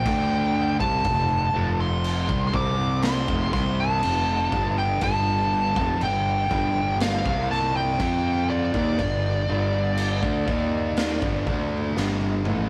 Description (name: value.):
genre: stoner and doom metal.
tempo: 60 BPM.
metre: 4/4.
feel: straight.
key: unclear.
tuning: A4 = 440 Hz.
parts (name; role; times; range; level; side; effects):
fuzz lead guitar; melody; 0.0-11.9 s; D5 to D6; -28 LUFS; equal; distortion.
crunchy overdriven guitar; riff; 0.0-12.7 s; F2 to F4; -36 LUFS; equal; none.
thick fuzz guitar; riff; 0.0-12.7 s; F2 to F4; -37 LUFS; equal; none.
thick fuzz guitar; riff; 0.0-12.7 s; F2 to F4; -31 LUFS; equal; distortion.
fuzz fingered electric bass; bass; 0.0-12.7 s; F1 to F2; -30 LUFS; equal; overdrive.
raw garage drum kit; drums; 0.1-12.7 s; crash cymbal, kick drum, snare drum, toms; -31 LUFS; equal; none.
room: light reverb.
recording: rough rehearsal-room recording, faint mains hum.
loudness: -24 LUFS.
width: mono.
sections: 0.0-12.7 A section.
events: drum fill 12.0-12.7.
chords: 0.0 F5; 5.0 G5.